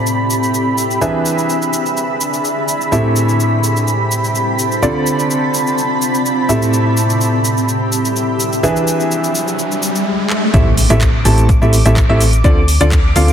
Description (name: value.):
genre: piano house.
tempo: 126 BPM.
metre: 4/4.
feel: straight.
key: A minor.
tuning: A4 = 439 Hz.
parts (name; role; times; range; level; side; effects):
analog string pad; sustained chords; 0.0-13.3 s; B5 to D6; -22 LUFS; right 4 dB; ensemble chorus, sidechain pumping.
clear concert grand piano; riff; 0.0-13.3 s; A2 to A5; -16 LUFS; equal; sidechain pumping, ping-pong delay.
granular cloud pad; texture; 0.0-10.1 s; C4 to B5; -20 LUFS; left 1 dB; built-in reverb, sidechain pumping.
house drum kit; drums; 0.1-13.3 s; cabasa, handclaps, hi-hat; -22 LUFS; equal; none.
riser and impact; sound effects; 8.4-12.4 s; none; -21 LUFS; left 1 dB; none.
solid FM bass; bass; 10.5-13.3 s; A1 to D2; -13 LUFS; equal; sidechain pumping.
electronic kick drum; drums; 10.5-13.0 s; none; -14 LUFS; equal; none.
room: moderate plate reverb, RT60 2.1 s.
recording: dense, heavily limited modern master.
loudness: -12 LUFS.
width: side -9 dB against mid.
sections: 0.0-10.5 A section; 10.5-13.3 B section.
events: riser 8.4-10.5; drum fill 10.3; drop 10.5-13.3; impact 10.5-12.4.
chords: 0.0 Am7; 1.0 E7; 2.9 Am7; 4.8 Dm7; 6.5 Am7; 8.6 E7; 10.5 Am7; 12.4 Dm7.